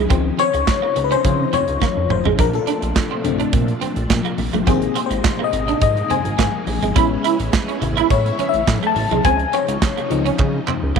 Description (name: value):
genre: early-eighties boogie funk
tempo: 105 BPM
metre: 4/4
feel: straight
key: unclear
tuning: A4 = 440 Hz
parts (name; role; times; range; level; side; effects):
- string machine, violins; sustained chords; 0.0-11.0 s; Bb2 to E4; -27 LUFS; right 1 dB; ensemble chorus
- clean electric guitar; riff; 0.0-11.0 s; Ab3 to E4; -24 LUFS; right 12 dB; ensemble chorus
- chorused synth bass; bass; 0.0-11.0 s; F1 to Db3; -22 LUFS; right 1 dB; none
- FM electric piano; accompaniment; 0.1-11.0 s; D3 to A5; -20 LUFS; left 11 dB; chorus
- modern studio drum kit; drums; 0.1-11.0 s; handclaps, hi-hat, kick drum, snare drum, toms; -21 LUFS; right 3 dB; none
- congas; percussion; 0.1-11.0 s; none; -28 LUFS; left 10 dB; none
room: moderate spring reverb, RT60 2.9 s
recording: 1960s-style stereo with parts hard left and right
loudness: -16 LUFS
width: side -6 dB against mid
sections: 0.0-11.0 A section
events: FM electric piano solo 0.0-11.0; drum fill 1.8-2.4, 10.4-11.0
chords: 0.1 Dbmaj9; 2.4 Bbmaj9; 4.7 Abmaj9; 7.0 Amaj9; 9.2 Dbmaj9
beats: | 0.10 0.68 1.25 1.82 | 2.39 2.96 3.53 4.10 | 4.67 5.25 5.82 6.39 | 6.96 7.53 8.10 8.68 | 9.25 9.82 10.39 10.96